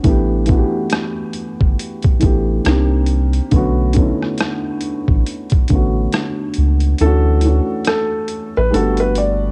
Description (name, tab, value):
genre	lo-fi hip hop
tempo	69 BPM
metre	4/4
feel	swing 60% on 16ths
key	B minor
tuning	A4 = 441 Hz
part	dark upright piano	accompaniment	0.0-9.5 s	D3 to G4	-22 LUFS	equal	cassette tape
part	soft dub sub bass	bass	0.0-9.5 s	G1 to D2	-18 LUFS	equal	none
part	boom bap sampler-style drum kit	drums	0.0-9.4 s	hi-hat, kick drum, rim click	-19 LUFS	equal	overdrive, cassette tape
part	felt-muted upright piano	melody	7.0-9.5 s	A4 to D5	-21 LUFS	equal	cassette tape
room	studio reverb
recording	home recording on cassette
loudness	-16 LUFS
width	mono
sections	0.0-7.0 A section; 7.0-9.5 B section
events	kick muted 7.0-9.5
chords	0.0 A9sus4; 2.6 Cm9; 3.5 Bm9; 7.0 Dmaj7; 8.7 Gmaj7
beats	| 0.04 0.91 1.78 2.65 | 3.52 4.39 5.26 6.13 | 7.00 7.87 8.73